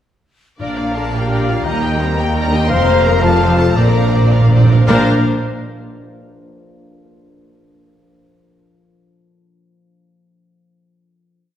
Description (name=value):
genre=cinematic, heroic adventure film score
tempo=106-116 BPM (dotted quarters)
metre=6/8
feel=straight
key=Bb major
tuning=A4 = 438 Hz
part: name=warm symphonic violin section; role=melody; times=0.6-5.1 s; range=C5 to Bb5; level=-24 LUFS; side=left 2 dB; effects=none
part: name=clear symphonic violin section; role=second line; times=0.6-5.1 s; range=Bb4 to C6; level=-27 LUFS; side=left 1 dB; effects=none
part: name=dark clarinet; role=second line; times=0.6-5.0 s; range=Bb4 to F5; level=-26 LUFS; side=left 2 dB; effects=none
part: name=flute section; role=second line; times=0.6-5.1 s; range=A5 to Bb5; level=-26 LUFS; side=left 3 dB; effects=none
part: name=warm oboe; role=second line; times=0.6-5.0 s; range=D5 to G5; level=-26 LUFS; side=right 1 dB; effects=none
part: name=clear symphonic viola section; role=accompaniment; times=0.6-5.1 s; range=G3 to D5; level=-23 LUFS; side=equal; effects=none
part: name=dark French horn section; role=sustained chords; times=0.6-5.0 s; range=Bb3 to C5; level=-21 LUFS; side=left 4 dB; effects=none
part: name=concert harp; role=arpeggios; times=0.6-6.0 s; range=Bb2 to F5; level=-25 LUFS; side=left 4 dB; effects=none
part: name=rich studio double bass section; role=bass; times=0.6-5.1 s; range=F1 to Eb2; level=-18 LUFS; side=right 2 dB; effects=none
part: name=rich symphonic cello section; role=bass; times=0.6-5.1 s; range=Eb2 to Bb2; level=-18 LUFS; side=right 1 dB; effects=none
part: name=timpani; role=percussion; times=0.6-5.1 s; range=F2 to Bb2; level=-18 LUFS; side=right 1 dB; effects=none
room=wet scoring stage reverb, RT60 1.6 s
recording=heard from further back in the room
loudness=-12 LUFS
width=side -10 dB against mid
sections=0.6-4.9 theme; 4.9-6.0 final chord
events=slowing down 2.2-4.9; timpani fill 3.8-4.9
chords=0.6 Bb; 1.7 Eb; 2.7 Fsus4; 3.2 F; 3.8 Bbadd9